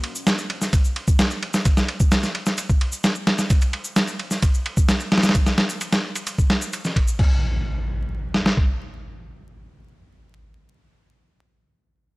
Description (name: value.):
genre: breakbeat, breaks.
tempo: 130 BPM.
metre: 4/4.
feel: straight.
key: none.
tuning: none.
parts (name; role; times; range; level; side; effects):
dusty soul sampler-style drum kit; drums; 0.0-8.7 s; crash cymbal, kick drum, ride cymbal, snare drum; -18 LUFS; equal; none.
shaker; drums; 0.2-7.2 s; none; -34 LUFS; left 1 dB; none.
impact; sound effects; 7.2-10.7 s; none; -27 LUFS; equal; none.
room: light reverb.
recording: dry, gritty hardware recording, vinyl crackle.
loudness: -19 LUFS.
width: side -23 dB against mid.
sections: 0.0-7.2 A section; 7.2-10.9 B section.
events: none.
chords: none.